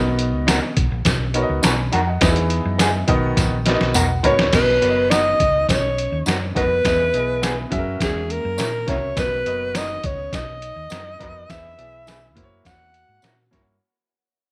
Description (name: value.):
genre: uptempo 1960s-style soul.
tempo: 103 BPM.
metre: 4/4.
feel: straight.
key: B major.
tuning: A4 = 442 Hz.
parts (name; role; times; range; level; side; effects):
warm baby grand piano; accompaniment; 0.0-13.7 s; B2 to B5; -26 LUFS; equal; none.
hollow-body short-scale fingered electric bass; bass; 0.0-13.8 s; F#1 to A#2; -27 LUFS; equal; none.
trip hop sampler-style drum kit; drums; 0.2-13.7 s; crash cymbal, hi-hat, kick drum, snare drum, toms; -24 LUFS; equal; overdrive.
electric guitar through a small old amp; stabs; 0.5-13.6 s; B3 to B4; -28 LUFS; equal; none.
tambourine; percussion; 0.5-13.4 s; none; -33 LUFS; equal; none.
breathy alto saxophone; melody; 4.3-13.5 s; G#4 to F#5; -23 LUFS; equal; none.
vibraphone with soft mallets; second line; 4.3-13.5 s; G#3 to F#4; -37 LUFS; equal; none.
room: light reverb, studio reverb.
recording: none.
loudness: -19 LUFS.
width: mono.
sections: 0.0-4.5 A section; 4.5-13.8 B section.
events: drum fill 3.4-4.5; grand piano fill 3.4-4.5; fade-out 4.5-13.8.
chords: 0.0 Bmaj7; 2.2 Emaj7; 3.1 Bmaj7; 6.8 Emaj7; 7.7 F#7; 9.2 Bmaj7; 11.5 Emaj7; 12.4 F#7.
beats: 0.48 1.06 1.64 | 2.21 2.79 3.37 3.95 | 4.53 5.11 5.69 6.26 | 6.84 7.42 8.01 8.59 | 9.17 9.75 10.33 10.91 | 11.49 12.07 12.65 13.24.